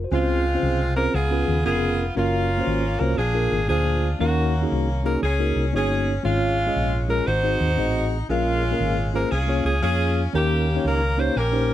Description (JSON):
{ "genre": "uptempo gospel", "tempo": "118 BPM", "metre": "4/4", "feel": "swing 65% on 8ths", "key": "Db major", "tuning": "A4 = 439 Hz", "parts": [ { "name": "mellow tine electric piano", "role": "accompaniment", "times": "0.0-11.7 s", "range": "Ab2 to Eb5", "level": "-25 LUFS", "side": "left 1 dB", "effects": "medium stereo tremolo" }, { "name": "hollow-body short-scale fingered electric bass", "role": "bass", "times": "0.0-11.7 s", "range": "F1 to F2", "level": "-24 LUFS", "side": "equal", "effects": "none" }, { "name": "clear saxophone section", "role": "melody", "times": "0.1-11.7 s", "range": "Ab3 to C5", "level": "-24 LUFS", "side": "equal", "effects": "none" } ], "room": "light reverb, studio reverb", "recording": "none", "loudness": "-20 LUFS", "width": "side -12 dB against mid", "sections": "0.1-11.7 A section", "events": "none", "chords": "0.1 Dbmaj7; 1.1 Db7; 2.2 Gbmaj7; 3.2 Bb7; 4.2 Ebm7; 6.2 Db/Ab; 7.3 Ab7; 8.3 Bbm7; 10.3 Eb7", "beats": "| 0.12 0.63 1.14 1.65 | 2.16 2.67 3.18 3.69 | 4.21 4.72 5.23 5.74 | 6.25 6.76 7.27 7.78 | 8.29 8.80 9.31 9.82 | 10.33 10.84 11.35" }